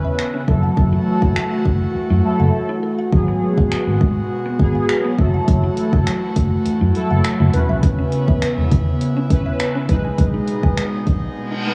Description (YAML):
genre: dance-pop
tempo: 102 BPM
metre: 4/4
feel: straight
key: F# dorian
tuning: A4 = 436 Hz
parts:
  - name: mellow synth brass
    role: accompaniment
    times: 0.0-11.7 s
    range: E3 to B4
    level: -25 LUFS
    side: equal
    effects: chorus, phaser, sidechain pumping, cassette tape
  - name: airy breathy pad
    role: sustained chords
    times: 0.0-11.7 s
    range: B2 to F#4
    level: -25 LUFS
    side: equal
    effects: chorus, sidechain pumping, cassette tape
  - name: mallet-like synth pluck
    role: arpeggios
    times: 0.0-11.6 s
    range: E3 to G#5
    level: -31 LUFS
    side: equal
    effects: chorus, sidechain pumping, cassette tape, tape echo
  - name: vintage muted fingered electric bass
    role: bass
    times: 0.0-11.3 s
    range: E1 to G#2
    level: -21 LUFS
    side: equal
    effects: sidechain pumping
  - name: deep house drum kit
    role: drums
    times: 0.2-11.2 s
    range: finger snaps, hi-hat, kick drum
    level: -22 LUFS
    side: equal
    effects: cassette tape
  - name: reverse cymbal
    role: sound effects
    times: 11.5-11.7 s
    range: none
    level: -27 LUFS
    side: equal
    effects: none
room: light reverb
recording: home recording on cassette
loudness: -18 LUFS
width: mono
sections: 0.0-11.7 A section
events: break 2.5-3.1, 11.4-11.7; reverse cymbal 11.5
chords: 0.5 F#m7; 3.1 G#m7; 5.2 F#m7; 7.5 C#m7/E; 9.9 B6